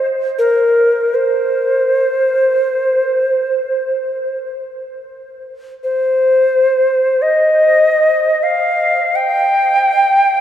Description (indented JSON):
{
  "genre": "world meditative, free-time meditation music",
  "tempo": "free time",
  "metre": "none",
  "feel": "none",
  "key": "C minor pentatonic",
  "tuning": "A4 = 442 Hz",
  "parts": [
    { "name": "Native American-style cedar flute", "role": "solo", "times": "0.0-10.4 s", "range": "Bb4 to G5", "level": "-12 LUFS", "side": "equal", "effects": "slapback echo" }
  ],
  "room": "wet huge ambient reverb, RT60 7.5 s",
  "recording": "in a vast, echoing space",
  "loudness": "-12 LUFS",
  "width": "side -10 dB against mid",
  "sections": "0.0-10.4 A section",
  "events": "none",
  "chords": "none",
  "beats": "free time"
}